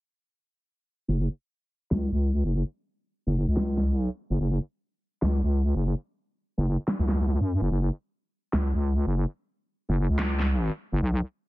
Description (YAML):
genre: heavy wobble dubstep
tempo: 145 BPM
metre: 4/4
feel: swing 55% on 16ths, half-time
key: unclear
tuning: A4 = 440 Hz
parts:
  - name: wobble bass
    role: bass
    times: 1.1-11.2 s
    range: F#1 to F#2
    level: -23 LUFS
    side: equal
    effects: chorus, overdrive
  - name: electronic snare drum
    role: drums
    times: 1.9-10.5 s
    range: none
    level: -30 LUFS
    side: equal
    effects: none
room: digital ambience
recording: dense, heavily limited modern master, low-pass filter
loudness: -24 LUFS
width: side -18 dB against mid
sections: 1.1-11.5 A section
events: filter sweep 1.1-11.5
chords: none